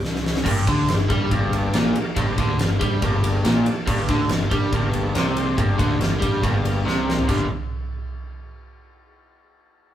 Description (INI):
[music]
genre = blues rock power trio and southern rock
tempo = 141 BPM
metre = 4/4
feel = straight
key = G minor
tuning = A4 = 440 Hz
[part]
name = fuzz picked electric bass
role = bass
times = 0.0-7.5 s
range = G1 to G2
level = -26 LUFS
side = left 1 dB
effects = overdrive
[part]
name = huge arena drum kit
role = drums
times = 0.0-7.4 s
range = crash cymbal, kick drum, ride cymbal, snare drum, toms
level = -23 LUFS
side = equal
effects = none
[part]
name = overdriven tonewheel organ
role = sustained chords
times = 0.4-7.5 s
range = Bb3 to C5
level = -30 LUFS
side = right 3 dB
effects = slow rotary speaker, chorus vibrato
[part]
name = overdriven electric guitar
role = riff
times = 0.5-7.5 s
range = G2 to G3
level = -22 LUFS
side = equal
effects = none
[sound]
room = moderate stone room reverb, RT60 1.0 s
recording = band playing live in one room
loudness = -18 LUFS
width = side -11 dB against mid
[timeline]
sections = 0.5-7.3 A section; 7.3-9.0 B section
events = drum fill 0.0-0.5, 6.9-7.3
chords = 0.5 Gm